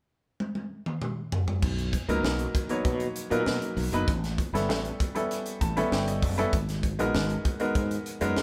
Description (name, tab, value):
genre	polished 1980s jazz-funk pop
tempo	98 BPM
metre	4/4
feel	straight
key	B major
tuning	A4 = 440 Hz
part	crisp fusion drum kit	drums	0.4-8.4 s	crash cymbal, hi-hat, kick drum, snare drum, toms	-32 LUFS	equal	none
part	sustaining fretless electric bass	bass	1.6-8.4 s	F#1 to B2	-33 LUFS	equal	none
part	bright baby grand piano	accompaniment	2.1-8.4 s	F#3 to A5	-31 LUFS	equal	none
room	light reverb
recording	band playing live in one room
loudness	-28 LUFS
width	mono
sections	0.0-1.6 A section; 1.6-8.4 B section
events	drum fill 0.4-1.6; grand piano fill 5.3-6.5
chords	0.0 N.C.; 1.6 Bmaj7; 4.1 A9; 6.5 G#m9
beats	0.40 1.01 | 1.62 2.23 2.85 3.46 | 4.07 4.69 5.30 5.91 | 6.53 7.14 7.75 8.37